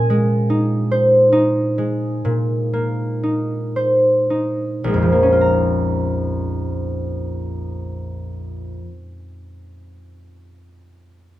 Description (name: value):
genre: classical, solo harp piece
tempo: 34-50 BPM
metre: 4/4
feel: rubato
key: Bb minor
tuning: A4 = 439 Hz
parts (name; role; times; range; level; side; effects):
- concert harp; solo; 0.0-9.0 s; Bb1 to Bb5; -17 LUFS; equal; none
room: light reverb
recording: minimal, uncompressed stereo recording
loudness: -16 LUFS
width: side -15 dB against mid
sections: 0.0-5.4 A section; 5.4-11.4 B section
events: slowing down 0.0-5.4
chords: 0.0 Abadd9/Bb; 5.4 Bbm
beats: 0.91 2.24 3.74 | 5.41 7.02 8.67